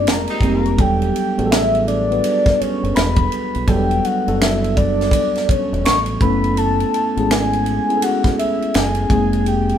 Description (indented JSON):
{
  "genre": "R&B, neo-soul",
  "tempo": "83 BPM",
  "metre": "4/4",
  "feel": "swing 62% on 16ths",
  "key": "E dorian",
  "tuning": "A4 = 440 Hz",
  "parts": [
    { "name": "soft octave-layered synth lead", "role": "melody", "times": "0.0-9.8 s", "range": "C#5 to C#6", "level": "-20 LUFS", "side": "left 1 dB", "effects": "chorus, phaser" },
    { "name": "mellow tine electric piano", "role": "accompaniment", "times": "0.0-9.8 s", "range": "F#3 to B4", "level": "-20 LUFS", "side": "equal", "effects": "slow stereo tremolo" },
    { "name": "deep dub fingered electric bass", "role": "bass", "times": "0.0-9.7 s", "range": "E1 to B1", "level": "-22 LUFS", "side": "equal", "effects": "none" },
    { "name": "tight funk drum kit", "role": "drums", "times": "0.1-9.8 s", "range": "finger snaps, kick drum, ride cymbal, snare drum", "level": "-20 LUFS", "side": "right 1 dB", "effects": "none" },
    { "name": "bright saxophone section", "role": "stabs", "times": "0.3-0.7 s", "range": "C4 to G4", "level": "-28 LUFS", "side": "right 3 dB", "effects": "none" }
  ],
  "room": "light reverb",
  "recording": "band playing live in one room",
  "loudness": "-15 LUFS",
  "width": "side -9 dB against mid",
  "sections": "0.0-9.8 A section",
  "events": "band accent 0.0-0.8",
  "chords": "0.0 Fm11; 0.8 Em11; 6.2 F#m11; 9.1 Fm11",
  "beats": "0.06 | 0.79 1.51 2.23 2.96 | 3.68 4.40 5.12 5.85 | 6.57 7.29 8.02 8.74 | 9.46"
}